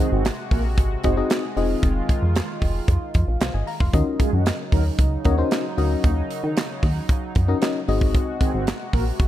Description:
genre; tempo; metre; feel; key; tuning
early-eighties boogie funk; 114 BPM; 4/4; straight; Eb dorian; A4 = 440 Hz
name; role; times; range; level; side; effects
mellow synth brass; second line; 0.0-9.0 s; Eb3 to Db5; -28 LUFS; right 2 dB; chorus
mellow FM electric piano; accompaniment; 0.0-8.7 s; C4 to C6; -25 LUFS; left 5 dB; chorus
chorused pulse-width pad; sustained chords; 0.0-9.3 s; C3 to Gb4; -31 LUFS; right 2 dB; none
plucky analog bass; bass; 0.1-9.3 s; F1 to Eb3; -22 LUFS; equal; none
tight funk drum kit; drums; 0.2-9.3 s; handclaps, hi-hat, kick drum, snare drum; -22 LUFS; equal; none
room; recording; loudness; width
small room ambience; none; -19 LUFS; side -13 dB against mid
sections
0.0-9.3 A section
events
none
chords
0.0 Ab7; 1.6 Fm7; 3.9 Ebm7; 7.9 Ab7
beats
0.25 0.78 1.30 | 1.83 2.36 2.88 3.41 | 3.94 4.46 4.99 5.51 | 6.04 6.57 7.09 7.62 | 8.14 8.67 9.20

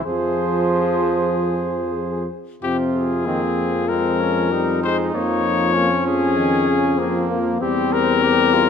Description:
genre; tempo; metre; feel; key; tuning
classical, brass quintet; 96 BPM; 4/4; straight; F minor; A4 = 439 Hz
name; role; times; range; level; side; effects
warm trumpet; melody; 0.0-8.7 s; G4 to Db5; -22 LUFS; left 8 dB; none
warm trumpet; second line; 0.0-8.7 s; Bb3 to C5; -25 LUFS; right 6 dB; none
bright trombone; accompaniment; 0.0-8.7 s; C3 to Ab3; -25 LUFS; right 2 dB; none
clear French horn; accompaniment; 0.0-8.7 s; Ab3 to Ab4; -25 LUFS; left 4 dB; none
dark bass trombone; bass; 0.0-8.7 s; E2 to F2; -24 LUFS; left 1 dB; none
room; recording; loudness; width
moderate recital hall reverb, RT60 1.6 s; none; -17 LUFS; side -7 dB against mid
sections
0.0-2.6 A section; 2.6-8.7 B section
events
none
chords
0.1 Fm; 5.1 Bbm/F; 7.6 C7/E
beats
| 0.06 0.70 1.34 1.99 | 2.63 3.27 3.90 4.52 | 5.14 5.75 6.38 6.99 | 7.62 8.24

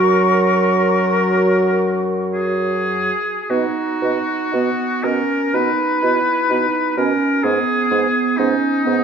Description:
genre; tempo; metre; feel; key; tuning
classical, slow romantic movement for wind quintet; 50-64 BPM; 4/4; rubato; B major; A4 = 442 Hz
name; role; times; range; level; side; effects
hollow concert flute; melody; 0.0-9.0 s; D#5 to C#6; -25 LUFS; left 7 dB; none
clear oboe; second line; 0.0-9.0 s; D#4 to B4; -20 LUFS; left 2 dB; none
warm French horn; accompaniment; 0.0-9.0 s; F#3 to B3; -23 LUFS; equal; none
warm clarinet; accompaniment; 0.0-9.0 s; B3 to F#4; -21 LUFS; right 4 dB; none
mellow bassoon; bass; 0.0-9.0 s; F#2 to B2; -22 LUFS; right 4 dB; none
room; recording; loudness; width
moderate concert hall reverb, RT60 2.1 s; minimal, uncompressed stereo recording; -15 LUFS; side -7 dB against mid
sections
0.0-3.5 A section; 3.5-9.0 B section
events
none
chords
0.0 F#; 3.5 B; 7.4 G#m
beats
0.02 1.18 2.34 | 3.50 4.53 5.54 6.50 | 7.44 8.38

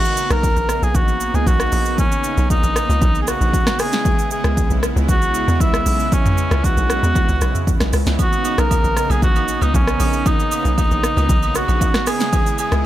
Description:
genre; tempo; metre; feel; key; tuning
amapiano; 116 BPM; 4/4; straight; unclear; A4 = 439 Hz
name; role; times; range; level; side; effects
mellow cor anglais; melody; 0.0-12.9 s; C#4 to A#4; -21 LUFS; equal; tape echo
lush unison pad; sustained chords; 0.0-12.9 s; C#3 to E4; -25 LUFS; right 1 dB; chorus, tremolo, sidechain pumping
deep house drum kit; drums; 0.1-12.8 s; hi-hat, kick drum, rim click, shaker, snare drum, toms; -19 LUFS; equal; none
tight log drum bass; bass; 0.3-12.9 s; A#1 to E2; -19 LUFS; equal; none
agogo bells and woodblock; percussion; 8.2-12.7 s; none; -31 LUFS; right 8 dB; none
room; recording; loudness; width
little or no reverb; none; -15 LUFS; side -13 dB against mid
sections
0.0-12.9 A section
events
none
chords
0.0 Bmaj9; 3.8 C#m7; 8.2 Bmaj9; 12.1 C#m7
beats
0.43 0.95 1.47 | 1.98 2.50 3.02 3.54 | 4.05 4.57 5.09 5.60 | 6.12 6.64 7.16 7.67 | 8.19 8.71 9.22 9.74 | 10.26 10.78 11.29 11.81 | 12.33 12.85

